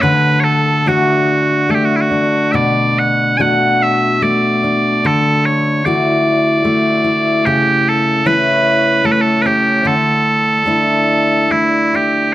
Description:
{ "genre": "celtic folk, Celtic slow air", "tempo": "73 BPM", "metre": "3/4", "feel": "uneven beats, rubato", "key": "unclear", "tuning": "A4 = 440 Hz", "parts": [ { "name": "loud bright bagpipes", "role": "melody", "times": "0.0-12.3 s", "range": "E4 to G#5", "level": "-14 LUFS", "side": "right 2 dB", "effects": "none" }, { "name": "fingerpicked steel-string acoustic guitar", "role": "accompaniment", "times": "0.0-12.3 s", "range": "B2 to F#4", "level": "-14 LUFS", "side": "left 1 dB", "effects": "none" } ], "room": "moderate recital hall reverb, RT60 1.4 s", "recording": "close, detailed microphones, lossy compression artefacts", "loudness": "-11 LUFS", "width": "side -14 dB against mid", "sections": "0.0-12.3 A section", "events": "none", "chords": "0.0 D; 2.5 Bm7; 5.1 Dadd9; 7.5 A/C#; 9.9 Dsus2" }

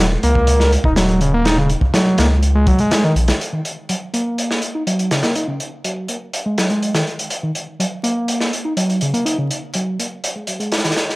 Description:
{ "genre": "breakbeat, breaks", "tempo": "123 BPM", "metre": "4/4", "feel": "straight", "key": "Eb minor", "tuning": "A4 = 444 Hz", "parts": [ { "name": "overdriven synth lead", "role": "riff", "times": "0.0-10.9 s", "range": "Db3 to Eb4", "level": "-19 LUFS", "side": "equal", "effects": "analog delay" }, { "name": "saturated sub bass", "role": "bass", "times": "0.0-3.3 s", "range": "Eb1 to Db2", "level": "-16 LUFS", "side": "equal", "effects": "none" }, { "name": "crunchy breakbeat drum kit", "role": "drums", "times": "0.0-11.2 s", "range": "hi-hat, kick drum, snare drum", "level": "-20 LUFS", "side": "equal", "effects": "high-pass filter on kick, high-pass filter on hats, high-pass filter on snare, high-pass filter on room" } ], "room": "light reverb, studio reverb", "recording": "dry, gritty hardware recording, vinyl crackle", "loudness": "-16 LUFS", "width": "side -23 dB against mid", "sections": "0.0-3.4 A section; 3.4-11.2 B section", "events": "none", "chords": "0.0 Ebm" }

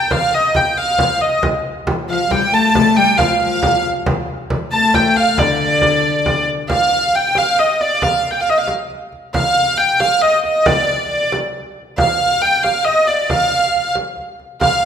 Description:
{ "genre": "medieval dance", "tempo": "91 BPM (dotted quarters)", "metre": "6/8", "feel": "straight", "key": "unclear", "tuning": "A4 = 443 Hz", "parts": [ { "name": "clear hurdy-gurdy", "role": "melody", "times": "0.0-14.9 s", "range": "D5 to A5", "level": "-14 LUFS", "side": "equal", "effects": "none" }, { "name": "frame drum", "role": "percussion", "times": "0.1-14.8 s", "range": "none", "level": "-22 LUFS", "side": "right 1 dB", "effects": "none" }, { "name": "warm viola da gamba", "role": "second line", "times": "2.1-6.4 s", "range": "D3 to A3", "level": "-19 LUFS", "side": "left 5 dB", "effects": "none" } ], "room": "wet recital hall reverb, RT60 1.8 s", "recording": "minimal, uncompressed stereo recording", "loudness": "-13 LUFS", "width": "side -8 dB against mid", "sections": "0.0-6.7 A section; 6.7-14.9 B section", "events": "none", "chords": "none" }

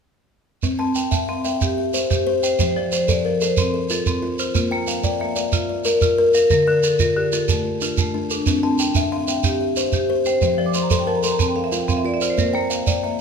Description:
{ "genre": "southern african traditional, mbira-style interlocking cycle", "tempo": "122 BPM (dotted quarters)", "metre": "12/8", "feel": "straight", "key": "C mixolydian", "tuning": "A4 = 440 Hz", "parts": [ { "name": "buzzing kalimba", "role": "arpeggios", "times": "0.6-13.2 s", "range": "D3 to A5", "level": "-21 LUFS", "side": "left 3 dB", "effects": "none" }, { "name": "shekere", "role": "percussion", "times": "0.6-13.0 s", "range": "none", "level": "-23 LUFS", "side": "right 4 dB", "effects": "none" }, { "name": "marimba with hard mallets", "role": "arpeggios", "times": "0.8-13.2 s", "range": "D3 to D6", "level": "-23 LUFS", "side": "right 1 dB", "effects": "none" } ], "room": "moderate recital hall reverb, RT60 1.4 s", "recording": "minimal, uncompressed stereo recording", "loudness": "-17 LUFS", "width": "side -6 dB against mid", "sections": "0.6-13.2 A section", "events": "marimba fill 10.5-12.4", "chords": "0.6 C; 2.6 F; 4.6 Bb; 6.5 Dm; 8.5 C; 10.4 F; 12.4 Bb" }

